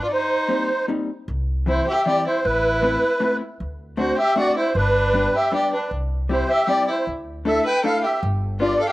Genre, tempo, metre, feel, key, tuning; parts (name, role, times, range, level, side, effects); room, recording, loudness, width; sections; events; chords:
musette waltz; 155 BPM; 3/4; straight; C major; A4 = 440 Hz
musette accordion; melody; 0.0-8.9 s; B4 to G5; -21 LUFS; right 1 dB; cassette tape
rich violin; second line; 0.0-8.9 s; D4 to B4; -24 LUFS; equal; cassette tape, plate reverb
vintage hollow-body jazz guitar; accompaniment; 0.5-8.8 s; E3 to A4; -26 LUFS; left 3 dB; cassette tape, plate reverb
upright bass; bass; 1.3-8.7 s; G1 to D2; -25 LUFS; equal; tube saturation
moderate studio reverb, RT60 0.5 s; home recording on cassette; -18 LUFS; side -17 dB against mid
0.0-1.3 A section; 1.3-8.9 B section
0.1 Cm7; 1.3 C; 2.4 Amadd9; 3.6 D7; 4.8 G; 5.9 C; 7.1 Dsus2; 8.2 G7